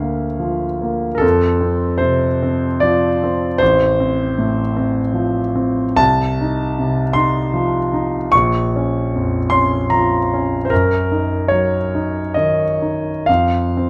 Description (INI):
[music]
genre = classical, romantic nocturne for solo piano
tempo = 62-81 BPM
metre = 3/4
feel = rubato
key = Bb minor from 6.0 s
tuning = A4 = 439 Hz
[part]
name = warm grand piano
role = solo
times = 0.0-13.9 s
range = A1 to Db6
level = -17 LUFS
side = equal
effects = none
[sound]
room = light reverb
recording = close, detailed microphones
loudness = -17 LUFS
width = mono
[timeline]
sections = 0.0-13.9 A section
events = none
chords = 0.0 Bb/D; 1.2 F; 3.6 F/A; 6.0 F7/C; 8.3 Bbm; 10.7 Ebm/Gb; 13.3 F5